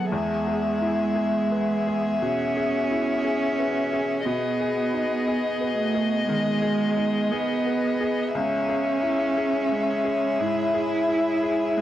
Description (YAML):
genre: neoclassical piano and strings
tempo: 59 BPM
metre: 4/4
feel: rubato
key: C# minor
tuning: A4 = 440 Hz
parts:
  - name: muted violin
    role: melody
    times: 0.0-11.8 s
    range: D#5 to F#5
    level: -27 LUFS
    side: left 4 dB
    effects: none
  - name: muted cello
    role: second line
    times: 0.0-11.8 s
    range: F#3 to E4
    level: -26 LUFS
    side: right 3 dB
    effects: tape echo
  - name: bright upright piano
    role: accompaniment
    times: 0.0-11.8 s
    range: C#2 to B4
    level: -30 LUFS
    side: left 3 dB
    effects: none
  - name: muted viola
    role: accompaniment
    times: 0.0-11.8 s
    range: G#4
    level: -34 LUFS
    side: right 1 dB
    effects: none
  - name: warbly tape-like pad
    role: sustained chords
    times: 0.0-11.8 s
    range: G#3 to A5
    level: -33 LUFS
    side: right 1 dB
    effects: chorus, built-in reverb
room: light reverb, studio reverb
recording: dry, gritty hardware recording, transformer saturation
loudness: -22 LUFS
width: side -12 dB against mid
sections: 0.0-11.8 A section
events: none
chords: 0.1 E; 4.3 G#m; 8.3 C#m